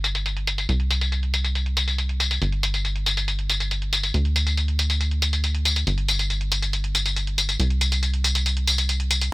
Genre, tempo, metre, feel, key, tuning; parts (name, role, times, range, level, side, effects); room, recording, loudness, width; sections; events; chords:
uplifting trance; 139 BPM; 4/4; straight; A4 = 441 Hz
tight sequencer bass; bass; 0.0-9.3 s; G1 to D2; -23 LUFS; equal; sidechain pumping
electronic hi-hat and tambourine; drums; 0.0-9.3 s; -23 LUFS; left 1 dB; sidechain pumping on hats, high-pass filter on hats, low-pass filter on hats, sidechain pumping on perc, high-pass filter on perc, low-pass filter on perc, high-pass filter on snare, low-pass filter on snare
little or no reverb; -20 LUFS; side -20 dB against mid
0.0-9.3 A section